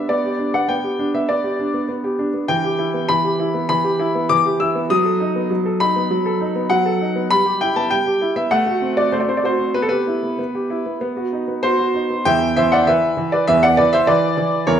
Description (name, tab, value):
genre	classical-period piano sonatina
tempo	100 BPM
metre	4/4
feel	straight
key	E minor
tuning	A4 = 440 Hz
part	clear baby grand piano	solo	0.0-14.8 s	E2 to E6	-16 LUFS	equal	none
room	wet recital hall reverb, RT60 1.6 s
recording	dark, warm production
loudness	-16 LUFS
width	side -9 dB against mid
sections	0.0-12.3 A section; 12.3-14.8 B section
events	none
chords	0.1 G/B; 2.5 Em; 4.9 B7/F#; 7.3 Em/G; 8.5 F#dim/A; 9.7 Em/B; 11.0 B; 12.3 E5